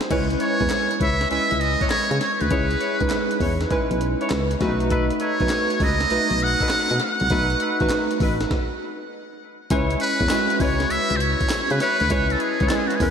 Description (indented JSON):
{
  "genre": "R&B, new jack swing",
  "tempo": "100 BPM",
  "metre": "4/4",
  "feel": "swing 67% on 16ths",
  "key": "C# minor",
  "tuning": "A4 = 438 Hz",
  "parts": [
    { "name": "warm analog keys", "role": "accompaniment", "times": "0.0-13.1 s", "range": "G#3 to B#4", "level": "-25 LUFS", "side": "right 1 dB", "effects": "chorus" },
    { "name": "breakbeat sampler-style drum kit", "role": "drums", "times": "0.0-13.1 s", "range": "crash cymbal, handclaps, hi-hat, kick drum, snare drum, tambourine", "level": "-27 LUFS", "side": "equal", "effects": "none" },
    { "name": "mellow horn section", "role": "stabs", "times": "0.1-12.7 s", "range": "D#4 to C#5", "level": "-30 LUFS", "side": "left 3 dB", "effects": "ping-pong delay" },
    { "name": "solid FM bass", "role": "bass", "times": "0.1-13.1 s", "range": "A1 to C#3", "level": "-24 LUFS", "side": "equal", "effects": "none" },
    { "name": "trumpet with metal mute", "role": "melody", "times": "0.4-13.1 s", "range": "F#4 to F#5", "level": "-23 LUFS", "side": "equal", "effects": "ping-pong delay" }
  ],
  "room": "wet lush hall reverb, RT60 2.3 s",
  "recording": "dreamy mix soaked in reverb",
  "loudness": "-19 LUFS",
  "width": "side -7 dB against mid",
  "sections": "0.1-9.7 A section; 9.7-13.1 B section",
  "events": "stop 8.5-9.7",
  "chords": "0.1 C#m7; 4.6 B7; 9.7 C#m7"
}